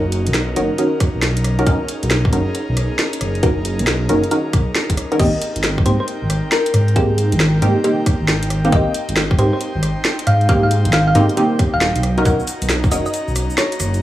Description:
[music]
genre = UK garage, two-step garage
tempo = 136 BPM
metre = 4/4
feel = swing 65% on 16ths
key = Ab major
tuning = A4 = 440 Hz
[part]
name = airy breathy pad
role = sustained chords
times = 0.0-14.0 s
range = C4 to A#5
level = -27 LUFS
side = equal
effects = chorus, sidechain pumping
[part]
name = punchy chord stab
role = stabs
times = 0.0-13.0 s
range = Bb3 to A#4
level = -20 LUFS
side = equal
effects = chorus, tape echo
[part]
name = dark detuned saw bass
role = bass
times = 0.0-14.0 s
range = Eb1 to Ab2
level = -18 LUFS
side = equal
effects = none
[part]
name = garage drum kit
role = drums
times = 0.1-14.0 s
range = cabasa, crash cymbal, hi-hat, rim click, snare drum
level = -22 LUFS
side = equal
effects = overdrive, studio reverb
[part]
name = electronic kick drum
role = drums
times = 1.0-12.9 s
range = none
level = -17 LUFS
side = equal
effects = overdrive, studio reverb
[part]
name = thumb-piano-like synth pluck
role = melody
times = 5.2-14.0 s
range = Ab4 to F#5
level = -22 LUFS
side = left 1 dB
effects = chorus, tape echo
[sound]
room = light reverb, digital ambience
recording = vinyl crackle, small room ambience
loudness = -14 LUFS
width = side -14 dB against mid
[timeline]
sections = 0.0-14.0 A section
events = none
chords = 0.0 Bmaj9; 5.2 Abmaj9; 12.0 Bmaj9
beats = 0.34 0.78 1.23 | 1.67 2.11 2.55 2.99 | 3.43 3.87 4.31 4.75 | 5.20 5.64 6.08 6.52 | 6.96 7.40 7.84 8.28 | 8.72 9.17 9.61 10.05 | 10.49 10.93 11.37 11.81 | 12.25 12.70 13.14 13.58 | 14.02

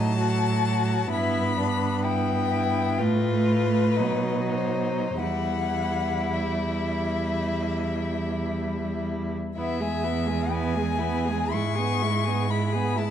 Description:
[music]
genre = classical, slow romantic movement for string quartet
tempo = 47-66 BPM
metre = 4/4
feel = rubato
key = E minor, E major from 9.6 s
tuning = A4 = 440 Hz
[part]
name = clear violin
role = melody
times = 0.0-13.1 s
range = B4 to C#6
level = -30 LUFS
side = left 9 dB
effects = none
[part]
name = rich violin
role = second line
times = 0.0-13.1 s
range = D4 to G#4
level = -31 LUFS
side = left 2 dB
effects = none
[part]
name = clear viola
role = accompaniment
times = 0.0-13.1 s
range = F#3 to B3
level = -29 LUFS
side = right 2 dB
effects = none
[part]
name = rich cello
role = bass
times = 0.0-13.1 s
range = E2 to B2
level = -27 LUFS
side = right 3 dB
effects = none
[sound]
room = moderate recital hall reverb, RT60 1.6 s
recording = dark, warm production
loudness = -23 LUFS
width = side -9 dB against mid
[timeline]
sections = 0.0-9.6 A section; 9.6-13.1 B section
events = none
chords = 0.0 B7(no3)/A (rootless); 1.1 Em/G; 3.0 F/A; 4.0 B; 5.2 Em; 9.6 E; 11.5 E/G#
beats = 0.20 | 1.13 2.06 2.99 3.99 | 5.20 6.34 7.43 8.52 | 9.57 10.51 11.54 12.51

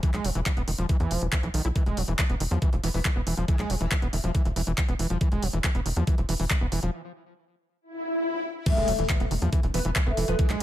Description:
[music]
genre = psychedelic trance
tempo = 139 BPM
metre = 4/4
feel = straight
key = unclear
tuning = A4 = 441 Hz
[part]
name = screaming distorted acid line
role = riff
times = 0.0-10.6 s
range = D#3 to E4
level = -31 LUFS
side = equal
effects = distortion, chorus, auto-pan, sidechain pumping, digital delay
[part]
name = drum and bass drum kit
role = drums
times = 0.0-10.6 s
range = crash cymbal, handclaps, hi-hat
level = -32 LUFS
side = equal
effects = overdrive
[part]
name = electronic kick drum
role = drums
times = 0.0-10.5 s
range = none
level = -24 LUFS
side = equal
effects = overdrive
[part]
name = tight sequencer bass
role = bass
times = 0.1-10.6 s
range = E1 to E2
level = -28 LUFS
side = equal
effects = none
[part]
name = metallic wobble bass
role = second line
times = 2.8-4.3, 9.7-10.6 s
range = E3 to B3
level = -40 LUFS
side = left 3 dB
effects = ensemble chorus, sidechain pumping, high-pass filter, tape echo
[part]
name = swell and impact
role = sound effects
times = 7.9-10.4 s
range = none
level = -31 LUFS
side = left 1 dB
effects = none
[part]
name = oud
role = melody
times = 8.7-10.6 s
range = A3 to B3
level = -29 LUFS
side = left 2 dB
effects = phaser, sidechain pumping, digital delay
[sound]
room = little or no reverb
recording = none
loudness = -23 LUFS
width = side -13 dB against mid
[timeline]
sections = 0.0-8.7 A section; 8.7-10.6 B section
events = break 6.9-8.7; swell 7.9-8.7; drop 8.7-10.6; impact 8.7-10.4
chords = 0.0 E5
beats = | 0.03 0.46 0.89 1.32 | 1.76 2.19 2.62 3.05 | 3.48 3.91 4.35 4.78 | 5.21 5.64 6.07 6.50 | 6.94 7.37 7.80 8.23 | 8.66 9.09 9.53 9.96 | 10.39

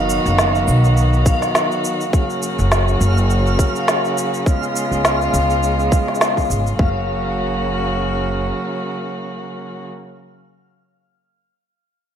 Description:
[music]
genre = folktronica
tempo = 103 BPM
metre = 4/4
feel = swing 56% on 16ths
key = F# major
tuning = A4 = 439 Hz
[part]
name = rich string quartet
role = sustained chords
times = 0.0-9.9 s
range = C#3 to F#4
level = -20 LUFS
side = equal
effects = none
[part]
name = upright bass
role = bass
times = 0.0-8.5 s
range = F#1 to C#2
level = -18 LUFS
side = equal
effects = none
[part]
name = backwards swelling texture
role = texture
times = 0.0-6.8 s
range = E#5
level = -26 LUFS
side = equal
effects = built-in reverb
[part]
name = electronic shaker and snare drum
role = drums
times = 0.1-6.8 s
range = none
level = -20 LUFS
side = equal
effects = overdrive
[part]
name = electronic kick drum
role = drums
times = 1.3-6.9 s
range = none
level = -17 LUFS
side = equal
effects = overdrive
[sound]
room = light reverb, digital ambience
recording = none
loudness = -15 LUFS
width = side -9 dB against mid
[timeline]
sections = 0.0-6.8 A section; 6.8-9.1 B section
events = none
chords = 0.0 B; 2.1 F#; 4.5 C#7; 6.8 F#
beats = 0.38 0.96 1.55 | 2.13 2.71 3.29 3.88 | 4.46 5.04 5.62 6.21 | 6.79 7.37 7.96 8.54

